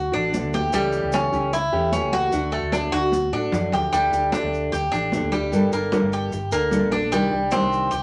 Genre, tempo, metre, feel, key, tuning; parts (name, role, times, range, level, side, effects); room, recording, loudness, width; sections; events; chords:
latin, Cuban son and guajira; 150 BPM; 4/4; straight; A4 = 444 Hz
Cuban tres; arpeggios; 0.0-8.0 s; G3 to G4; -25 LUFS; equal
mellow fretless electric bass; bass; 0.0-8.0 s; G1 to A2; -32 LUFS; equal
nylon-string guitar; accompaniment; 0.1-8.0 s; C3 to A4; -27 LUFS; equal
congas; percussion; 0.1-8.0 s; -32 LUFS; equal
maracas; percussion; 0.3-8.0 s; -44 LUFS; equal
wet studio reverb, RT60 0.5 s; -22 LUFS; mono
0.0-3.9 A section; 3.9-8.0 B section
drum fill 3.1-3.9
0.0 D; 0.7 A7/C#; 2.3 D; 3.9 Dsus4; 5.5 Gmadd9; 7.1 Cmadd9